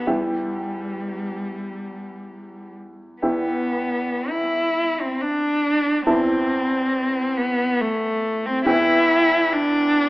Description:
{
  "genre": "classical, romantic duo for cello and grand piano",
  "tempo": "54-71 BPM",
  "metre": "3/4",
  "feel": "rubato",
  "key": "E minor",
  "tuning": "A4 = 442 Hz",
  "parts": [
    { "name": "warm cello", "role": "melody", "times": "0.0-10.1 s", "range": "G3 to E4", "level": "-20 LUFS", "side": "equal", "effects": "none" },
    { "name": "clear concert grand piano", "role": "accompaniment", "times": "0.0-10.1 s", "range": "E2 to A5", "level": "-25 LUFS", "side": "equal", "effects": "none" }
  ],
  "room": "wet recital hall reverb, RT60 1.5 s",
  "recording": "AM radio sound",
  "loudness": "-19 LUFS",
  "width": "side -19 dB against mid",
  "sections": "0.0-3.2 A section; 3.2-10.1 A section",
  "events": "none",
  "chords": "0.1 Em; 6.1 Am/E; 8.7 Em"
}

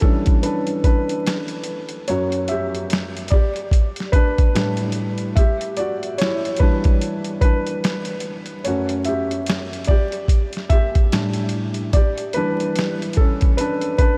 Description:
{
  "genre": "lo-fi hip hop",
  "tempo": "73 BPM",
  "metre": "4/4",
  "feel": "swing 62% on 16ths",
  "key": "E dorian",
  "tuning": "A4 = 440 Hz",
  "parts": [
    { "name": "felt-muted upright piano", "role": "accompaniment", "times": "0.0-14.2 s", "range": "F#2 to E5", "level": "-24 LUFS", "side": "equal", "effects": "cassette tape, low-pass filter" },
    { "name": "lo-fi sampler-style drum kit", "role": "drums", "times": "0.0-14.2 s", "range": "hi-hat, kick drum, snare drum", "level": "-21 LUFS", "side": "equal", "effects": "none" }
  ],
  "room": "moderate huge ambient reverb, RT60 4.5 s",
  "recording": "dreamy mix soaked in reverb, vinyl crackle",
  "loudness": "-20 LUFS",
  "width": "mono",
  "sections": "0.0-14.2 A section",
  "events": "felt piano solo 0.0-14.2",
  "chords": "0.0 Em7; 2.1 Em69/F#; 3.3 A9sus4; 5.4 Em7; 8.6 F#m7; 9.9 A7sus4; 11.9 Em7"
}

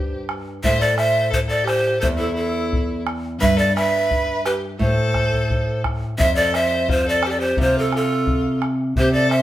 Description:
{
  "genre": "andean folk, Andean ensemble",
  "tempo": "86 BPM",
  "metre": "2/4",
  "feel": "straight",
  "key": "unclear",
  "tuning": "A4 = 440 Hz",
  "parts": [
    { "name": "breathy bright large pan pipes", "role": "melody", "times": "0.0-9.4 s", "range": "A4 to E5", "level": "-20 LUFS", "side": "right 1 dB", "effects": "none" },
    { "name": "clear violin", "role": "second line", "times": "0.0-9.4 s", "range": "E4 to C5", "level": "-26 LUFS", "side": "left 1 dB", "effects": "none" },
    { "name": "nylon-string guitar", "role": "accompaniment", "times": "0.0-9.4 s", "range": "E2 to C3", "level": "-23 LUFS", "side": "equal", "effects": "none" },
    { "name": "bombo", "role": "percussion", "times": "0.3-9.4 s", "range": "none", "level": "-25 LUFS", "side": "equal", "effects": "none" }
  ],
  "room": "wet large studio reverb, RT60 1.1 s",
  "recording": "band playing live in one room",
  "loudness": "-17 LUFS",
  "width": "side -13 dB against mid",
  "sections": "0.0-6.2 A section; 6.2-9.4 A section",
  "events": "none",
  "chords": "0.0 C5; 0.6 A5; 3.4 N.C.; 6.2 F"
}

